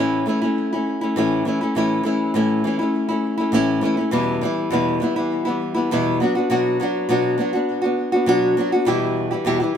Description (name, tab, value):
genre	pop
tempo	101 BPM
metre	4/4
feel	straight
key	unclear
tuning	A4 = 436 Hz
part	nylon-string guitar	solo	0.0-9.8 s	E2 to G4	-18 LUFS	equal	ping-pong delay
room	light reverb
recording	band playing live in one room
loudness	-18 LUFS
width	side -8 dB against mid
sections	0.0-8.9 A section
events	none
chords	0.0 A; 4.1 Em; 6.2 Bm; 8.9 Em